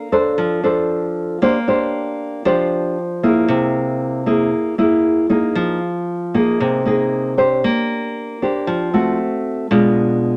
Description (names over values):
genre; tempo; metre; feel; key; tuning
bossa nova; 116 BPM; 4/4; straight; Bb major; A4 = 440 Hz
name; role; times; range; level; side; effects
nylon-string guitar; solo; 0.0-10.4 s; B2 to C5; -18 LUFS; equal; none
room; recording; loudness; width
moderate studio ambience, RT60 0.5 s; none; -18 LUFS; mono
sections
0.0-1.4 A section; 1.4-10.4 B section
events
none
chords
0.0 Bbmaj9; 1.4 Bb69; 3.5 C7b13; 5.6 Fm11; 7.6 Bb69; 9.2 Am6; 9.7 Bdim7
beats
0.38 0.90 | 1.42 1.94 2.46 2.97 | 3.49 4.01 4.53 5.05 | 5.56 6.08 6.60 7.12 | 7.63 8.15 8.67 9.19 | 9.71 10.22